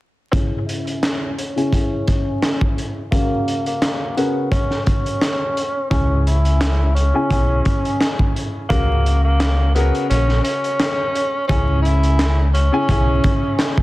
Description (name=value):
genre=hip hop, boom-bap hip-hop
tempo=86 BPM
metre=4/4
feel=swing 54% on 16ths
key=C# dorian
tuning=A4 = 440 Hz
part: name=warm tenor saxophone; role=melody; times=0.3-13.7 s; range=A#3 to E4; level=-24 LUFS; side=equal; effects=high-pass filter, low-pass filter, ping-pong delay
part: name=warm upright piano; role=accompaniment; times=0.3-13.8 s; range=C#3 to G#5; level=-24 LUFS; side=left 1 dB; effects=high-pass filter, low-pass filter
part: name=crunchy breakbeat drum kit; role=drums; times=0.3-13.8 s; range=handclaps, hi-hat, kick drum, snare drum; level=-20 LUFS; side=equal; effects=vintage 12-bit sampler grit
part: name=deep dub fingered electric bass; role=bass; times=5.9-13.2 s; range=A#1 to C#2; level=-16 LUFS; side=equal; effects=none
room=small room ambience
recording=dense, heavily limited modern master, vinyl crackle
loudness=-16 LUFS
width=side -18 dB against mid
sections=0.3-11.5 A section; 11.5-13.8 B section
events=filter sweep 0.3-11.5; break 10.1-11.5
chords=0.3 C#m; 3.1 F#add9/C#; 5.9 C#m; 8.7 F#add9/C#; 11.5 C#m